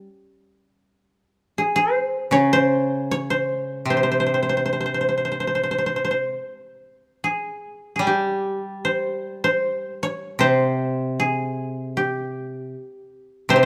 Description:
japanese traditional; 68-80 BPM; 4/4; rubato; A4 = 439 Hz
koto; accompaniment; 0.0-13.7 s; C3 to G3; -26 LUFS; equal
koto; melody; 1.6-13.7 s; G4 to Db5; -24 LUFS; equal
light reverb; close, detailed microphones; -23 LUFS; mono
0.0-7.2 A section; 7.2-13.7 B section

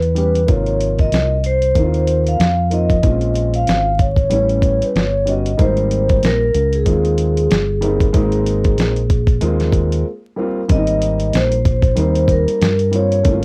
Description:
hip hop, jazz-hop; 94 BPM; 4/4; swing 58% on 16ths; Ab major; A4 = 440 Hz
vibraphone with soft mallets; melody; 0.0-13.4 s; Ab4 to F5; -21 LUFS; equal; cassette tape
fingered electric bass; bass; 0.0-13.4 s; G1 to G2; -20 LUFS; equal
dusty soul sampler-style drum kit; drums; 0.0-13.4 s; hi-hat, kick drum, snare drum; -20 LUFS; equal; cassette tape
dark grand piano; accompaniment; 0.1-13.4 s; C3 to G4; -24 LUFS; equal
light reverb; home recording on cassette, vinyl crackle; -16 LUFS; mono
0.0-10.7 A section; 10.7-13.4 B section
break 10.1-10.7
0.5 Ab69; 3.0 Bbm9; 4.3 A9; 5.6 Abmaj9

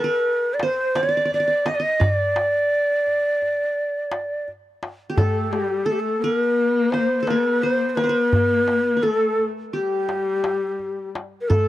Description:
Turkish makam ensemble; 171 BPM (eighths); 9/8; straight; D makam hicaz; A4 = 437 Hz
breathy ney; melody; 0.0-11.7 s; G4 to Eb5; -20 LUFS; equal
qanun; second line; 0.0-11.7 s; G4 to Eb5; -28 LUFS; right 2 dB
darbuka; percussion; 0.6-11.7 s; -22 LUFS; equal
warm viola; second line; 5.2-11.7 s; G3 to B3-36c; -25 LUFS; left 4 dB
little or no reverb; dry, close 1970s-style studio recording; -19 LUFS; side -14 dB against mid
0.0-5.2 A section; 5.2-11.7 A section

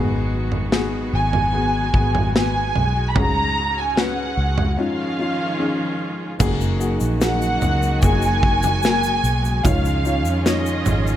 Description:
pop ballad; 74 BPM; 4/4; straight; F# major; A4 = 440 Hz
felt-muted upright piano; accompaniment; 0.0-11.2 s; G#2 to C#5; -26 LUFS; left 4 dB
rich studio string section; sustained chords; 0.0-11.2 s; C#3 to F#4; -28 LUFS; right 2 dB
vintage muted fingered electric bass; bass; 0.0-11.2 s; F#1 to E#2; -22 LUFS; equal
modern studio drum kit; drums; 0.5-11.0 s; crash cymbal, kick drum, snare drum, toms; -22 LUFS; equal
dark studio violin section; melody; 1.1-11.2 s; D#5 to B5; -23 LUFS; right 1 dB
clear French horn section; second line; 6.4-11.2 s; C#3 to D#4; -29 LUFS; right 3 dB
egg shaker; percussion; 6.4-11.2 s; -37 LUFS; left 10 dB
small room ambience; -17 LUFS; side -11 dB against mid
0.0-6.4 A section; 6.4-11.2 B section
break 4.8-6.4
0.0 G#m7; 3.2 C#sus4; 4.8 C#add9; 6.4 F#add9; 9.6 C#add9

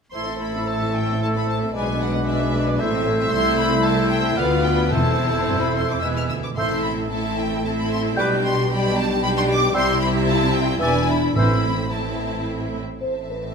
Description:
quick classical-period movement for symphony orchestra; 112 BPM; 3/4; rubato; A minor; A4 = 440 Hz
clear studio violin section; melody; 0.1-13.5 s; D5 to F6; -27 LUFS; left 2 dB
mellow hollow silver concert flute; second line; 0.1-11.6 s; D6 to G6; -30 LUFS; left 2 dB
rich studio violin section; second line; 0.1-13.5 s; E4 to G5; -29 LUFS; left 1 dB
bright studio viola section; accompaniment; 0.1-13.5 s; G3 to F4; -28 LUFS; right 2 dB
mellow bassoon; accompaniment; 0.1-11.6 s; E3 to B3; -28 LUFS; right 4 dB
clear studio double bass section; bass; 0.1-13.5 s; E1 to D2; -27 LUFS; right 3 dB
rich studio cello section; bass; 0.1-13.5 s; C2 to C3; -27 LUFS; right 2 dB
clear oboe; second line; 0.2-11.6 s; A4 to D5; -32 LUFS; right 1 dB
mellow French horn section; sustained chords; 0.2-13.4 s; E3 to C5; -26 LUFS; left 5 dB
timpani; percussion; 4.9-7.3, 11.4-12.1 s; E2 to A2; -26 LUFS; equal
wet recital hall reverb, RT60 1.7 s; -18 LUFS; side -6 dB against mid
0.1-13.0 A section
0.1 Am; 1.7 G#dim/B; 2.8 Am; 3.3 Am/C; 4.4 Bdim/D; 4.9 Am/E; 6.0 E; 6.6 Am; 8.2 G/B; 9.7 C; 10.8 E7; 11.4 Am

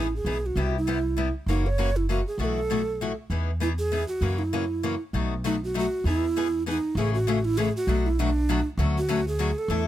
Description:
acoustic string swing (jazz manouche); 197 BPM; 3/4; swing 58% on 8ths; E major; A4 = 440 Hz
breathy bright round clay ocarina; melody; 0.0-9.9 s; D4 to C#5; -27 LUFS; right 3 dB
picked steel-string acoustic guitar; accompaniment; 0.0-9.9 s; B2 to A4; -29 LUFS; left 5 dB
upright bass; bass; 0.0-9.9 s; F#1 to F#2; -27 LUFS; equal
little or no reverb; close, detailed microphones; -23 LUFS; side -13 dB against mid
0.0-7.0 A section; 7.0-9.9 B section
0.0 Emaj7; 0.6 Cmaj7; 1.5 F#7; 2.4 B7sus4; 3.3 Emaj7; 4.2 F#7; 5.1 B7; 6.0 Emaj7; 7.0 Amaj7; 7.9 Bm7; 8.8 Dmaj7#11

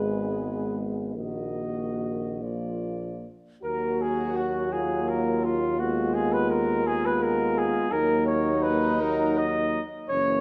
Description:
classical, hymn-like piece for brass band; 46-58 BPM (dotted quarters); 6/8; rubato; Eb minor; A4 = 440 Hz
mellow flugelhorn; melody; 0.0-10.4 s; F4 to Eb5; -30 LUFS; equal
dark French horn section; second line; 0.0-10.4 s; Db4 to Ab4; -32 LUFS; equal
mellow euphonium; accompaniment; 0.0-10.4 s; Bb3 to Cb4; -37 LUFS; equal
mellow trombone; accompaniment; 0.0-10.4 s; Eb3 to Ab3; -36 LUFS; equal
warm tuba; bass; 0.0-10.4 s; Gb1 to Eb2; -34 LUFS; equal
moderate scoring stage reverb, RT60 1.9 s; -26 LUFS; mono
0.0-3.6 A section; 3.6-10.4 B section
0.0 Abm; 1.2 Ebm/Bb; 2.4 Bb; 3.6 Ebm; 5.8 Abm/Eb; 7.9 Ebm

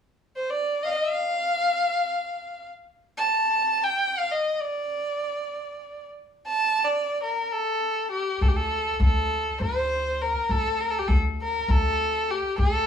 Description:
Turkish makam ensemble; free time; D makam kurdi; A4 = 439 Hz
rich violin; melody; 0.4-12.9 s; G4 to A5; -24 LUFS; equal
upright bass; bass; 8.4-12.9 s; D2; -24 LUFS; left 1 dB
wet stone room reverb, RT60 0.9 s; band playing live in one room, small room ambience; -23 LUFS; side -8 dB against mid
0.1-8.4 A section; 8.4-12.9 B section

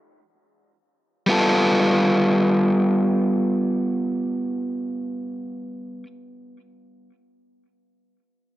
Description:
blues; free time; G mixolydian; A4 = 440 Hz
overdriven semi-hollow guitar; solo; 1.3-6.1 s; G3 to A4; -19 LUFS; equal; analog delay
moderate studio reverb, RT60 0.8 s; -18 LUFS; side -15 dB against mid
0.0-1.3 A section; 1.3-5.5 B section
slowing down 0.0-1.3; stop 0.0-0.8
0.0 N.C.; 1.3 G9

